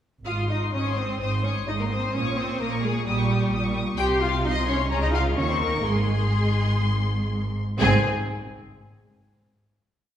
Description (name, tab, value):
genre	quick classical-period movement for string orchestra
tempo	127 BPM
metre	4/4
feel	rubato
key	Ab major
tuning	A4 = 438 Hz
part	warm studio violin section	melody	0.3-8.1 s	Ab5 to Eb6	-30 LUFS	left 4 dB	none
part	rich studio violin section	second line	0.3-8.1 s	G4 to G5	-31 LUFS	left 3 dB	none
part	rich studio viola section	accompaniment	0.3-8.1 s	G3 to G4	-28 LUFS	equal	none
part	rich studio cello section	bass	0.3-8.1 s	Ab2 to Eb3	-27 LUFS	right 1 dB	none
part	rich studio double bass section	bass	0.3-8.1 s	Ab1 to Eb2	-27 LUFS	right 2 dB	none
room	wet recital hall reverb, RT60 1.6 s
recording	recorded in a church or concert hall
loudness	-22 LUFS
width	side -10 dB against mid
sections	0.3-7.8 A section; 7.8-9.7 final chord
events	none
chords	0.3 Ab; 2.1 Eb7/Bb; 4.0 Cmadd11; 4.9 Bbm/Db; 5.4 Eb5; 5.9 Ab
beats	| 0.27 0.74 1.21 1.68 | 2.14 2.61 3.07 3.53 | 3.99 4.45 4.91 5.38 | 5.85 6.34 6.83 7.32 | 7.81